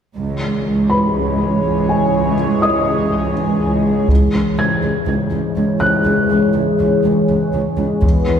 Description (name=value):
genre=cinematic, hybrid orchestral and electronic film score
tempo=122 BPM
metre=4/4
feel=straight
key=C# minor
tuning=A4 = 440 Hz
part: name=chorused pulse-width pad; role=sustained chords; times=0.2-8.4 s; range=E3 to C#5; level=-17 LUFS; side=left 1 dB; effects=low-pass filter
part: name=warm symphonic cello section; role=bass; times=0.2-8.4 s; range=C#2 to E2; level=-19 LUFS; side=right 2 dB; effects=none
part: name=felt-muted upright piano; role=texture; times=0.9-8.1 s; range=B4 to G#6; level=-21 LUFS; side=left 2 dB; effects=tape echo
part: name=taiko ensemble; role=drums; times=4.1-5.0, 8.0-8.4 s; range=none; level=-16 LUFS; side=equal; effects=none
room=wet scoring stage reverb, RT60 1.9 s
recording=heard from further back in the room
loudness=-14 LUFS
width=side -8 dB against mid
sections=0.2-4.1 A section; 4.1-8.4 B section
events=build-up 4.1-8.4; filter sweep on analog synth pad 4.1-8.4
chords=0.2 C#m